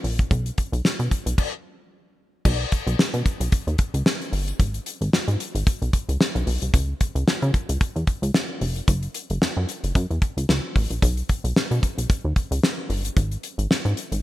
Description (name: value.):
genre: early-eighties boogie funk.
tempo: 112 BPM.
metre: 4/4.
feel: swing 56% on 16ths.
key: unclear.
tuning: A4 = 439 Hz.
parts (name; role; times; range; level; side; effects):
plucky analog bass; bass; 0.0-14.2 s; E#1 to C#3; -23 LUFS; equal; none.
damped 70s drum kit; drums; 0.0-14.2 s; crash cymbal, hi-hat, kick drum, snare drum; -22 LUFS; equal; gated reverb.
room: little or no reverb.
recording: bright 1980s-style digital production.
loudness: -21 LUFS.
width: side -16 dB against mid.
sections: 0.0-2.5 A section; 2.5-14.2 B section.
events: stop 1.4-2.5.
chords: none.